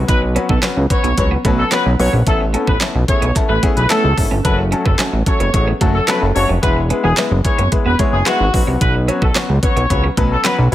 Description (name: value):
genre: dance-pop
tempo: 110 BPM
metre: 4/4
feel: straight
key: unclear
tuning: A4 = 439 Hz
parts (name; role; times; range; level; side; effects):
- clear grand piano; accompaniment; 0.0-10.7 s; F#3 to C#5; -20 LUFS; left 4 dB; sidechain pumping
- twelve-string electric guitar; riff; 0.0-10.6 s; G#3 to C#4; -25 LUFS; right 6 dB; ensemble chorus
- fat analog bass; bass; 0.0-10.7 s; E1 to C#2; -16 LUFS; equal; sidechain pumping
- clear horn section; melody; 0.1-10.7 s; F#4 to C#5; -20 LUFS; left 1 dB; sidechain pumping
- pop drum kit; drums; 0.1-10.7 s; handclaps, hi-hat, kick drum, snare drum; -18 LUFS; equal; none
- group handclap; percussion; 0.6-10.6 s; none; -31 LUFS; right 5 dB; none
room: little or no reverb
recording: none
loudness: -13 LUFS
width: side -13 dB against mid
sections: 0.0-10.7 A section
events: none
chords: 0.0 Bsus2; 2.3 Aadd9; 4.4 F#m; 6.6 E; 8.5 Bsus2